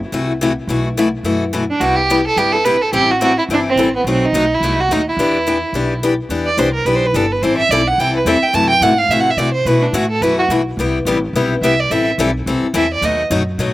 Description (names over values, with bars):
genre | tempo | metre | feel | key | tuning
acoustic string swing (jazz manouche) | 214 BPM | 4/4 | swing 58% on 8ths | E minor | A4 = 440 Hz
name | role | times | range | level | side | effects
picked steel-string acoustic guitar | accompaniment | 0.1-13.7 s | B2 to A4 | -17 LUFS | left 3 dB | slapback echo
upright bass | bass | 0.1-13.7 s | G1 to C3 | -22 LUFS | equal | none
warm violin | melody | 1.7-13.2 s | B3 to A5 | -15 LUFS | right 2 dB | none
room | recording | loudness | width
little or no reverb | recorded outdoors, with no room sound | -13 LUFS | side -16 dB against mid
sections
0.0-6.3 A section; 6.3-13.7 B section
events
violin solo 6.3-13.7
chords
0.0 F#m7b5; 0.7 B7sus4; 1.8 Cmaj7; 2.9 Am7; 4.0 B7; 5.2 Em7; 7.4 Am9; 8.5 F#m7b5; 9.7 B7sus4; 10.8 Am7; 13.0 B7